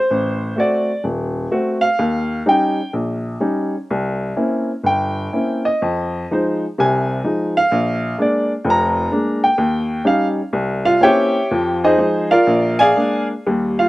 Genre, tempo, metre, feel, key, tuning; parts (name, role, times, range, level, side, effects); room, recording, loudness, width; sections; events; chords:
solo jazz; 126 BPM; 4/4; swing 66% on 8ths, rubato; A4 = 439 Hz
warm upright piano; solo; 0.0-13.9 s; Eb1 to Bb5; -15 LUFS; equal
little or no reverb; recorded outdoors, with no room sound; -15 LUFS; side -18 dB against mid
0.0-13.5 A section
upright piano solo 0.0-13.9
0.1 Adim7; 2.0 Eb7; 3.9 C7b9; 5.8 Fm7; 7.7 Bb7; 9.6 Eb7; 10.6 C7b9; 11.5 Fm7; 12.5 Bb7